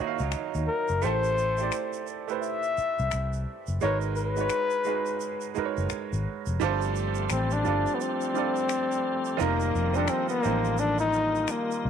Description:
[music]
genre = R&B, neo-soul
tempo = 86 BPM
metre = 4/4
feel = swing 59% on 16ths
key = unclear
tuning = A4 = 439 Hz
[part]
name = electric guitar through a small old amp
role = second line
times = 0.0-1.0 s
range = Gb3 to Gb4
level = -35 LUFS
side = right 11 dB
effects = vibrato effect
[part]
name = clear grand piano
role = accompaniment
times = 0.0-11.9 s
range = Eb3 to Gb5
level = -31 LUFS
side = right 12 dB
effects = none
[part]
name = vintage muted fingered electric bass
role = bass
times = 0.0-11.9 s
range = F1 to Eb2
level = -29 LUFS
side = left 1 dB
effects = none
[part]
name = tube shaker and finger snaps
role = percussion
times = 0.2-11.8 s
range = none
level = -39 LUFS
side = left 4 dB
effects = none
[part]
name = warm flugelhorn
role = melody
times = 0.7-11.9 s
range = Bb3 to E5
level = -28 LUFS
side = left 4 dB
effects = none
[part]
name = tonewheel organ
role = sustained chords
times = 6.6-11.9 s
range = Eb3 to G4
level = -35 LUFS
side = equal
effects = chorus vibrato, fast rotary speaker
[sound]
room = moderate spring reverb, RT60 2.3 s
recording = 1960s-style stereo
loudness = -25 LUFS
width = side -8 dB against mid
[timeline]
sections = 0.0-6.6 A section; 6.6-11.9 B section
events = none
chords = 0.0 Ebm9; 1.0 Am9; 3.8 Abm9; 6.6 G9sus4; 9.4 F9sus4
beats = 0.33 | 1.02 1.72 2.42 3.12 | 3.81 4.51 5.21 5.91 | 6.60 7.30 8.00 8.70 | 9.39 10.09 10.79 11.49

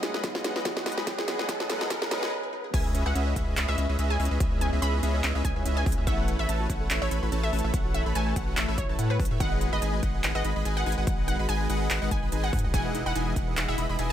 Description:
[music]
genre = future bass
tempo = 144 BPM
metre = 4/4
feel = swing 55% on 16ths, half-time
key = unclear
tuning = A4 = 439 Hz
[part]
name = felt-muted upright piano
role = accompaniment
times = 0.0-2.8 s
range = F#3 to G#4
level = -37 LUFS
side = right 4 dB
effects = sidechain pumping, ping-pong delay
[part]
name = ethereal airy pad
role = sustained chords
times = 0.0-14.1 s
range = G#3 to D#6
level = -39 LUFS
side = equal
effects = ensemble chorus, built-in reverb, tremolo, vintage 12-bit sampler grit, sidechain pumping
[part]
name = wide unison pluck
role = arpeggios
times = 0.0-14.1 s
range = C#4 to E5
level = -40 LUFS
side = right 2 dB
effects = sidechain pumping, ping-pong delay
[part]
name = big bright polysynth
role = riff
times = 0.0-14.1 s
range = E3 to B5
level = -33 LUFS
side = equal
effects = chorus, sidechain pumping
[part]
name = saturated sub bass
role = bass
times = 0.0-14.1 s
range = E1 to A2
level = -28 LUFS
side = equal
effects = sidechain pumping, high-pass filter
[part]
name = trap drum kit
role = drums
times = 0.0-14.1 s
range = crash cymbal, handclaps, hi-hat, snare drum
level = -31 LUFS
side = equal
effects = none
[part]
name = riser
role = sound effects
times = 0.0-2.3 s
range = none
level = -36 LUFS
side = left 1 dB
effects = none
[part]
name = electronic kick drum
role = drums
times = 0.2-13.5 s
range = none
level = -29 LUFS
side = equal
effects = none
[part]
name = wide unison pluck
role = melody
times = 2.7-14.1 s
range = B4 to B5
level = -34 LUFS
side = equal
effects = sidechain pumping, digital delay
[part]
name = wide unison pluck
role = arpeggios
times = 2.7-14.1 s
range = E5 to B5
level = -40 LUFS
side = right 1 dB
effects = vintage 12-bit sampler grit, sidechain pumping
[sound]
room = little or no reverb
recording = high-pass filter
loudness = -25 LUFS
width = side -10 dB against mid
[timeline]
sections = 0.0-2.7 A section; 2.7-14.1 B section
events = build-up 0.0-2.7; drum fill 0.0-2.3; riser 0.0-2.3; break 2.3-2.7; drop 2.7-14.1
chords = 0.0 Emaj7; 2.7 C#m7; 6.1 A6; 9.4 G#m7; 12.7 Emaj7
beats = 0.24 0.65 | 1.07 1.49 1.90 2.32 | 2.74 3.15 3.57 3.99 | 4.40 4.82 5.24 5.65 | 6.07 6.49 6.90 7.32 | 7.74 8.15 8.57 8.99 | 9.40 9.82 10.24 10.65 | 11.07 11.49 11.90 12.32 | 12.74 13.15 13.57 13.99

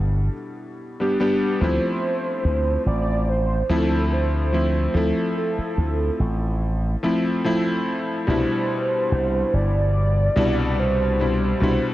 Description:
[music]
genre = vaporwave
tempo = 72 BPM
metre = 4/4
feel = straight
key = unclear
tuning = A4 = 440 Hz
[part]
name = clear electric grand piano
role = accompaniment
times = 0.0-11.9 s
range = B2 to G4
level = -23 LUFS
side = left 1 dB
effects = lush chorus, analog delay
[part]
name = slap bass with an envelope filter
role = bass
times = 0.0-11.8 s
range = G1 to D2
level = -21 LUFS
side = equal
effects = none
[part]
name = warm velvety synth lead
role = melody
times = 1.6-11.9 s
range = A4 to D5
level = -26 LUFS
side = right 1 dB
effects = chorus, tape echo
[sound]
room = moderate lush hall reverb, RT60 2.8 s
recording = dark, warm production, cassette tape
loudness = -19 LUFS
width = side -15 dB against mid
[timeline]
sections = 0.0-11.9 A section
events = none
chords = 0.0 Cmaj9 (rootless); 1.6 Dm9; 8.3 Cmaj9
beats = 0.79 | 1.62 2.45 3.29 4.12 | 4.95 5.79 6.62 7.45 | 8.29 9.12 9.95 10.79 | 11.62

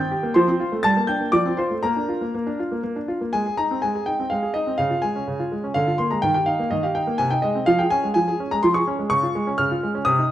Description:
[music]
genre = classical-period piano sonatina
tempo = 125 BPM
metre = 3/4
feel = rubato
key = Bb major, Ab major from 3.3 s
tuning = A4 = 440 Hz
[part]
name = bright grand piano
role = solo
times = 0.0-10.3 s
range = C3 to A6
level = -19 LUFS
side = equal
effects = none
[sound]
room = moderate recital hall reverb, RT60 1.3 s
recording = dark, warm production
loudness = -19 LUFS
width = side -12 dB against mid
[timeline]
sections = 0.0-3.3 A section; 3.3-10.3 B section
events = none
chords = 0.4 F; 0.8 Gm; 1.3 F; 1.8 Bb; 3.3 Ab; 4.8 Db; 5.8 Bb7/D; 6.2 Eb; 7.2 Ab/C; 7.7 Db/F; 9.1 Db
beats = | 0.35 0.84 1.33 | 1.83 2.33 2.83 | 3.34 3.83 4.31 | 4.79 5.28 5.76 | 6.24 6.72 7.20 | 7.68 8.16 8.63 | 9.11 9.59 10.07

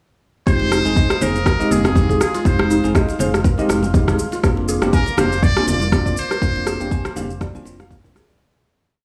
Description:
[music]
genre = afro house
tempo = 121 BPM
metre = 4/4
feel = swing 56% on 16ths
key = F dorian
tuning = A4 = 443 Hz
[part]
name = trumpet with metal mute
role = melody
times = 0.5-7.6 s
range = Ab4 to D5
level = -26 LUFS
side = equal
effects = analog delay
[part]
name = dark analog pad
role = sustained chords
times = 0.5-8.4 s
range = Ab3 to F6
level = -33 LUFS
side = equal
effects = chorus, sidechain pumping
[part]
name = mallet-like synth pluck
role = arpeggios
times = 0.5-8.4 s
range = C4 to Ab5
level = -29 LUFS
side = equal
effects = lush chorus, sidechain pumping, analog delay
[part]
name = bell-like tine electric piano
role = stabs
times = 0.5-8.2 s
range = Ab3 to Ab4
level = -24 LUFS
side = equal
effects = sidechain pumping, analog delay
[part]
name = warm sub bass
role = bass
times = 0.5-8.1 s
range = F1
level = -28 LUFS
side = equal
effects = sidechain pumping
[part]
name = electronic kick drum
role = drums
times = 0.5-8.1 s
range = none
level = -20 LUFS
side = equal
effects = none
[part]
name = electronic shaker and rim click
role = drums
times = 0.5-8.4 s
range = none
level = -25 LUFS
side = equal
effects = none
[part]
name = congas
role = percussion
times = 0.6-8.4 s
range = none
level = -29 LUFS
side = equal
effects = none
[sound]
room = little or no reverb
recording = dry, gritty hardware recording, studio reverb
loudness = -18 LUFS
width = mono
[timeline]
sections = 0.5-8.4 groove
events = fade-out 5.8-8.4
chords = 0.5 Fm7; 4.4 Bbadd9/F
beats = | 0.47 0.97 1.46 1.96 | 2.45 2.95 3.44 3.94 | 4.44 4.93 5.43 5.92 | 6.42 6.92 7.41 7.91

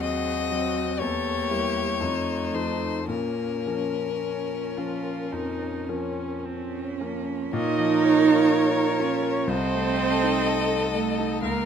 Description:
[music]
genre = classical, slow romantic movement for piano quintet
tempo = 53-64 BPM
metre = 4/4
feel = rubato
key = Bb minor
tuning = A4 = 440 Hz
[part]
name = rich violin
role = melody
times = 0.0-11.7 s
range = Bb4 to F5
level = -30 LUFS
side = left 9 dB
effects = none
[part]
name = warm cello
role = second line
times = 0.0-11.7 s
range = A3 to A4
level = -26 LUFS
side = right 6 dB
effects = none
[part]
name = warm violin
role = second line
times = 0.0-11.7 s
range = Db4 to Bb4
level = -33 LUFS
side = left 3 dB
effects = none
[part]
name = bright concert grand piano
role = accompaniment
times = 0.0-11.7 s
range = C2 to Bb5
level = -29 LUFS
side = left 2 dB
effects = none
[part]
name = rich viola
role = accompaniment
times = 0.0-11.7 s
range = A3 to Eb5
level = -33 LUFS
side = right 3 dB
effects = none
[sound]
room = light reverb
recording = close, detailed microphones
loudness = -23 LUFS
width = side -8 dB against mid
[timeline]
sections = 0.0-7.5 A section; 7.5-11.7 B section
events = none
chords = 0.0 Cdim/Eb; 1.0 Edim7; 2.0 F7; 3.1 Bbm; 9.5 Adim/C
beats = 0.03 0.99 2.01 | 3.09 4.21 5.32 6.45 | 7.52 8.51 9.48 10.46 | 11.43

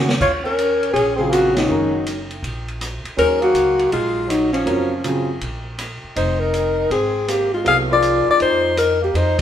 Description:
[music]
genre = modal jazz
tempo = 161 BPM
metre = 4/4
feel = swing 65% on 8ths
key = Eb dorian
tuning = A4 = 440 Hz
[part]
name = warm concert grand piano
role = accompaniment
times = 0.0-5.3, 7.6-8.7 s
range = Db3 to Db5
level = -23 LUFS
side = right 1 dB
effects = none
[part]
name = upright bass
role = bass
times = 0.0-9.4 s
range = F1 to Db3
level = -26 LUFS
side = equal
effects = none
[part]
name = vintage drum kit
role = drums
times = 0.1-9.4 s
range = crash cymbal, hi-hat, kick drum, ride cymbal, rim click, snare drum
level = -28 LUFS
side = equal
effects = none
[part]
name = breathy alto saxophone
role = melody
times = 0.2-9.4 s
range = Db4 to F5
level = -17 LUFS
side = left 2 dB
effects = none
[part]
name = breathy tenor saxophone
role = second line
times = 0.2-9.4 s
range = F3 to Ab4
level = -24 LUFS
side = right 4 dB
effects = none
[sound]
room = wet stone room reverb, RT60 1.0 s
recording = band playing live in one room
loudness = -16 LUFS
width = side -10 dB against mid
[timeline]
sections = 0.2-9.4 A section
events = drum fill 0.0; band accent 1.5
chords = 0.2 Ebm11; 6.2 Fm11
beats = | 0.20 0.57 0.94 1.32 | 1.69 2.06 2.43 2.81 | 3.18 3.55 3.92 4.29 | 4.67 5.04 5.41 5.79 | 6.16 6.53 6.90 7.28 | 7.65 8.02 8.39 8.77 | 9.14

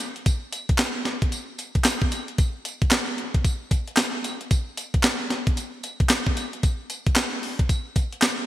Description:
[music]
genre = R&B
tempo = 113 BPM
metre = 4/4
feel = swing 62% on 16ths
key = none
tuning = none
[part]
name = clean 12-bit digital drum machine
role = drums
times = 0.0-8.4 s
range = handclaps, hi-hat, kick drum, snare drum, tambourine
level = -21 LUFS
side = equal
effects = gated reverb
[sound]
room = moderate lush hall reverb, RT60 1.8 s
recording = bright 1980s-style digital production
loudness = -22 LUFS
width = side -14 dB against mid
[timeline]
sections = 0.0-8.5 A section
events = none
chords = none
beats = | 0.26 0.79 1.32 1.85 | 2.39 2.92 3.45 3.98 | 4.51 5.04 5.57 6.10 | 6.63 7.16 7.70 8.23

